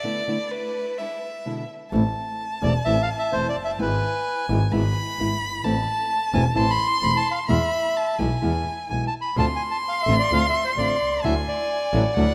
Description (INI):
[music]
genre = tango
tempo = 129 BPM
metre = 4/4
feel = rubato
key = A harmonic minor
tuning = A4 = 439 Hz
[part]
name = warm violin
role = second line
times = 0.0-12.3 s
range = B4 to C6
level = -29 LUFS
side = equal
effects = none
[part]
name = nylon-string guitar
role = accompaniment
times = 0.0-12.3 s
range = B2 to F#4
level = -30 LUFS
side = equal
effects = none
[part]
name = clear studio string section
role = stabs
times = 0.0-1.7, 9.4-12.3 s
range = G#3 to F#4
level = -42 LUFS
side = equal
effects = none
[part]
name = rich double bass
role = bass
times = 1.9-12.3 s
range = E1 to E2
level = -27 LUFS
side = equal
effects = none
[part]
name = bandoneon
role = melody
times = 2.6-12.3 s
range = B4 to C6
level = -28 LUFS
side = equal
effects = none
[sound]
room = moderate lush hall reverb, RT60 2.7 s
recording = rough home demo mix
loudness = -23 LUFS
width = mono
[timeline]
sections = 0.0-1.9 A section; 1.9-12.3 B section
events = violin solo 0.0-1.9; break 0.0-1.9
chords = 0.0 E7sus4; 1.0 E7; 1.9 Am; 3.8 E/G#; 5.6 Am; 7.5 E; 9.4 Dm7; 11.2 Dadd9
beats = | 0.04 0.51 0.98 1.45 | 1.92 2.39 2.86 3.33 | 3.80 4.26 4.72 5.19 | 5.65 6.11 6.57 7.04 | 7.50 7.96 8.43 8.90 | 9.37 9.84 10.30 10.77 | 11.23 11.70 12.16